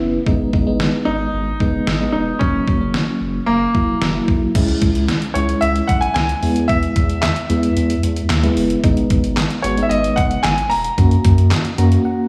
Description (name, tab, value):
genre	synth-pop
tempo	112 BPM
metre	4/4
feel	straight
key	unclear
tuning	A4 = 440 Hz
part	FM electric piano with tremolo	accompaniment	0.0-12.3 s	F#3 to A#5	-22 LUFS	equal	slapback echo
part	round analog bass	bass	0.0-12.0 s	E1 to F#2	-22 LUFS	equal	none
part	detuned 8-bit digital drum machine	drums	0.3-12.0 s	crash cymbal, handclaps, hi-hat, kick drum, snare drum	-22 LUFS	equal	none
part	clear concert grand piano	melody	1.1-12.3 s	A#3 to A#5	-23 LUFS	equal	slapback echo
room	moderate scoring stage reverb, RT60 1.6 s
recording	big arena sound, small room reverb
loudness	-17 LUFS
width	mono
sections	0.0-4.5 A section; 4.5-12.3 B section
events	FM electric piano fill 11.5-12.3; break 12.1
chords	0.3 G#m; 2.4 F#; 4.5 C#m; 6.4 E; 8.8 G#m; 11.0 F#